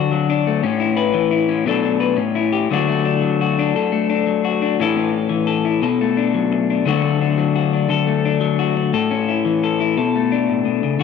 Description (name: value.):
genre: highlife.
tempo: 116 BPM (dotted quarters).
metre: 12/8.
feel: straight.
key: D major.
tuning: A4 = 440 Hz.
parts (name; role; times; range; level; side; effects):
electric guitar through a small old amp; solo; 0.0-11.0 s; A2 to B4; -16 LUFS; left 7 dB; none.
room: moderate plate reverb, RT60 3.4 s.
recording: none.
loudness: -16 LUFS.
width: side -6 dB against mid.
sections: 0.0-2.7 A section; 2.7-11.0 B section.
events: none.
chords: 0.0 D; 0.6 Aadd9; 1.7 Bm7; 2.2 A7; 2.7 D; 4.8 A; 5.8 Bm7; 6.9 D; 8.9 A; 10.0 Bm7.